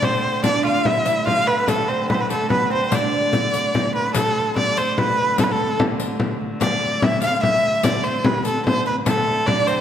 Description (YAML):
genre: medieval dance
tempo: 146 BPM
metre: 3/4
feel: straight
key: D dorian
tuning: A4 = 437 Hz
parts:
  - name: clear erhu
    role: melody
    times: 0.0-9.8 s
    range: A4 to F5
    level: -20 LUFS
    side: equal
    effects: none
  - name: lute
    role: second line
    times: 0.0-3.9, 9.1-9.8 s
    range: A3 to F4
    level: -25 LUFS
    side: right 4 dB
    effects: none
  - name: rich hurdy-gurdy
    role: drone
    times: 0.0-9.8 s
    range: D3 to A3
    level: -28 LUFS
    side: equal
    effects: none
  - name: frame drum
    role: percussion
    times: 0.0-9.7 s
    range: none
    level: -23 LUFS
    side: left 2 dB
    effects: none
  - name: riq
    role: percussion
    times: 0.4-9.8 s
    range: none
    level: -30 LUFS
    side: left 5 dB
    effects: none
room: wet recital hall reverb, RT60 1.6 s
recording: none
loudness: -17 LUFS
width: side -9 dB against mid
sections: 0.0-4.1 A section; 4.1-9.8 A section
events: none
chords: none